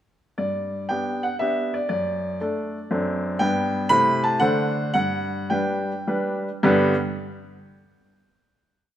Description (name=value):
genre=classical-period piano sonatina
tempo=105-123 BPM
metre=3/4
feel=rubato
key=G major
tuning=A4 = 440 Hz
part: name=clear baby grand piano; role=solo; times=0.4-6.9 s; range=F#2 to B5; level=-21 LUFS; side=equal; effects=none
room=wet recital hall reverb, RT60 1.6 s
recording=none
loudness=-21 LUFS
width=side -11 dB against mid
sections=0.4-6.6 A section; 6.6-8.3 final chord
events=slowing down 2.7-6.6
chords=0.4 G; 1.9 D/F#; 2.9 D7/F#; 3.4 G; 3.9 Am/C; 4.4 D7; 5.0 G